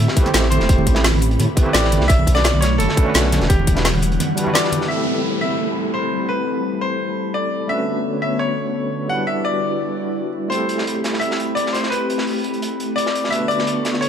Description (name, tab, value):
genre	liquid drum and bass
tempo	171 BPM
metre	4/4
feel	straight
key	A dorian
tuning	A4 = 439 Hz
part	bright baby grand piano	melody	0.0-14.1 s	G4 to F#5	-23 LUFS	left 2 dB	tape echo
part	airy breathy pad	sustained chords	0.0-14.1 s	D3 to C#6	-24 LUFS	left 1 dB	chorus, vintage 12-bit sampler grit, sidechain pumping
part	dark detuned saw bass	bass	0.0-4.2 s	E1 to A2	-18 LUFS	equal	none
part	overdriven tine electric piano	accompaniment	0.1-14.1 s	G3 to C5	-25 LUFS	right 2 dB	fast tremolo, low-pass filter, ping-pong delay
part	crunchy breakbeat drum kit	drums	0.1-4.9, 10.5-14.1 s	hi-hat, snare drum	-26 LUFS	equal	high-pass filter on hats, high-pass filter on snare, high-pass filter on room
part	electronic kick drum	drums	0.2-3.7 s	none	-16 LUFS	equal	none
part	garage drum kit	drums	0.2-4.8 s	hi-hat, snare drum	-22 LUFS	equal	none
part	congas	percussion	0.3-4.8 s	none	-25 LUFS	right 2 dB	none
part	downlifter	sound effects	4.9-7.7 s	none	-27 LUFS	equal	none
room	light reverb, small room reverb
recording	none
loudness	-16 LUFS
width	side -8 dB against mid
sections	0.0-4.9 A section; 4.9-14.1 B section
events	drop 0.0-4.9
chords	0.0 Am9; 2.1 Bm9; 3.5 Em9; 4.9 Am9; 7.7 Bm9; 9.1 Em9; 10.5 Am9; 13.3 Bm9